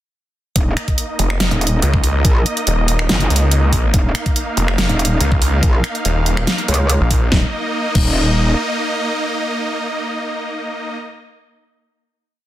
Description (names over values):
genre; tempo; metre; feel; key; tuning
heavy wobble dubstep; 142 BPM; 4/4; half-time; unclear; A4 = 440 Hz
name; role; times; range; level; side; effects
supersaw chords; sustained chords; 0.6-11.0 s; Bb3 to F5; -22 LUFS; right 1 dB; sidechain pumping, low-pass filter
metallic wobble bass; bass; 0.6-8.5 s; Eb1 to Db2; -16 LUFS; equal; chorus, overdrive
dubstep drum kit; drums; 0.6-8.1 s; crash cymbal, finger snaps, hi-hat, snare drum; -20 LUFS; equal; small room ambience
electronic kick drum; drums; 0.6-8.1 s; none; -16 LUFS; equal; small room ambience
snarling distorted saw bass; bass; 1.2-7.3 s; Eb1 to Db2; -16 LUFS; equal; overdrive
room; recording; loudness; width
little or no reverb; dense, heavily limited modern master; -14 LUFS; side -13 dB against mid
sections
0.6-7.3 drop; 7.3-10.7 final chord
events
drop 0.6-7.3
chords
0.6 Eb5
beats
| 0.56 0.98 1.40 1.82 | 2.25 2.67 3.09 3.52 | 3.94 4.36 4.78 5.21 | 5.63 6.05 6.47 6.89 | 7.32 7.74 8.16 8.59 | 9.01 9.43 9.85 10.28